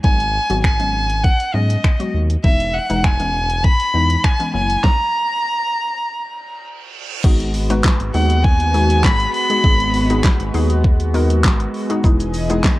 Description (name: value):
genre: dance-pop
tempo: 100 BPM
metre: 4/4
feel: straight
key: G# minor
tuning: A4 = 445 Hz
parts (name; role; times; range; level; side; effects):
- rich violin; melody; 0.0-10.2 s; D#5 to B5; -19 LUFS; equal; cassette tape, analog delay
- hollow square pluck; accompaniment; 0.0-12.8 s; E3 to B4; -23 LUFS; left 2 dB; chorus, sidechain pumping, cassette tape
- round analog bass; bass; 0.0-12.6 s; E1 to G#2; -19 LUFS; equal; sidechain pumping
- pop drum kit; drums; 0.0-12.8 s; crash cymbal, finger snaps, handclaps, hi-hat, kick drum, shaker, snare drum; -16 LUFS; equal; overdrive, cassette tape
- reverse cymbal; sound effects; 6.5-7.2 s; none; -32 LUFS; right 7 dB; none
- lush unison pad; sustained chords; 7.2-12.8 s; E3 to D#5; -23 LUFS; equal; chorus, sidechain pumping, cassette tape
room: digital ambience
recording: home recording on cassette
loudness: -14 LUFS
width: side -17 dB against mid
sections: 0.0-7.2 A section; 7.2-12.8 B section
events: stop 4.8-7.2; reverse cymbal 6.5-7.2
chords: 0.0 G#m7; 2.4 Emaj7; 4.5 F#7; 7.2 G#m7; 12.0 Emaj7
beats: | 0.04 0.64 1.24 1.84 | 2.44 3.04 3.64 4.24 | 4.84 5.44 6.04 6.64 | 7.24 7.84 8.44 9.04 | 9.64 10.24 10.84 11.44 | 12.04 12.64